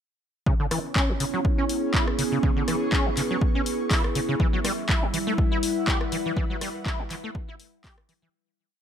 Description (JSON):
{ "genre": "acid house", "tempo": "122 BPM", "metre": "4/4", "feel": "swing 55% on 16ths", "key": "unclear", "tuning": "A4 = 440 Hz", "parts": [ { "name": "warbly tape-like pad", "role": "sustained chords", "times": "0.8-8.3 s", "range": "G3 to E5", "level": "-31 LUFS", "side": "right 2 dB", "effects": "chorus, built-in reverb, sidechain pumping" }, { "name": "acid bass, saw", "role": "riff", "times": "0.5-8.3 s", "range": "C#3 to G4", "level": "-29 LUFS", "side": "equal", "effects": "overdrive, ensemble chorus, ping-pong delay" }, { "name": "electronic kick drum", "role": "drums", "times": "0.5-7.9 s", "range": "none", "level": "-24 LUFS", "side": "equal", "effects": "overdrive" }, { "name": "airy breathy pad", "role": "texture", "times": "0.8-8.3 s", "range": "C#4 to C#6", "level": "-31 LUFS", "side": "equal", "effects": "chorus, sidechain pumping" }, { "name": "punchy analog drum machine", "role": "drums", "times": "0.7-8.2 s", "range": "handclaps, hi-hat, rim click", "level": "-29 LUFS", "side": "left 1 dB", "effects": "overdrive" } ], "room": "light reverb, digital ambience", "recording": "none", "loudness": "-22 LUFS", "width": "side -9 dB against mid", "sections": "0.5-8.3 groove", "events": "fade-out 5.7-8.3", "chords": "0.5 C#m7; 4.4 Em", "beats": "| 0.47 0.96 1.45 1.94 | 2.43 2.92 3.42 3.91 | 4.40 4.89 5.38 5.88 | 6.37 6.86 7.35 7.84" }